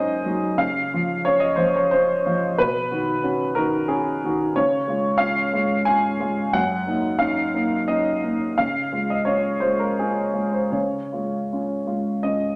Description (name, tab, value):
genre	neoclassical minimalist piano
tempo	76-92 BPM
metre	3/4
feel	rubato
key	Db major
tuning	A4 = 441 Hz
part	warm upright piano	solo	0.0-12.6 s	Gb2 to Ab5	-22 LUFS	equal	none
room	wet large studio reverb, RT60 1.2 s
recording	none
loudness	-22 LUFS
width	mono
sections	0.0-12.6 A section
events	none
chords	0.0 Gb6; 0.6 Db; 2.6 Cbadd9; 4.6 Db; 6.6 Gb6; 8.6 Db